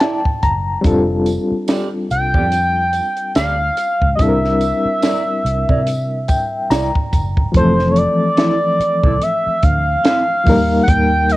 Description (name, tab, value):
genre	lush 1970s-style soul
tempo	72 BPM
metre	4/4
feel	swing 58% on 16ths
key	F major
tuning	A4 = 440 Hz
part	bright reed electric piano	accompaniment	0.0-11.4 s	E3 to Bb5	-19 LUFS	left 2 dB	overdrive, tremolo, cassette tape
part	electric guitar through a small old amp	riff	0.0-10.2 s	C4 to D5	-24 LUFS	right 4 dB	phaser, cassette tape
part	compact cocktail drum kit	drums	0.0-11.4 s	hi-hat, kick drum, snare drum	-18 LUFS	equal	cassette tape
part	vintage muted fingered electric bass	bass	0.4-11.4 s	F1 to C3	-20 LUFS	equal	transformer saturation
part	tambourine	percussion	0.9-7.3 s	none	-39 LUFS	right 6 dB	none
part	expressive synth lead	melody	2.1-11.4 s	C5 to G5	-17 LUFS	equal	chorus, cassette tape
room	small room ambience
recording	home recording on cassette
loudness	-13 LUFS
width	side -18 dB against mid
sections	0.0-7.5 A section; 7.5-11.4 B section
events	reed electric piano fill 0.0-0.9, 5.9-7.5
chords	0.0 C9; 0.9 F69; 4.2 C9; 7.5 Fmaj7; 10.5 Eb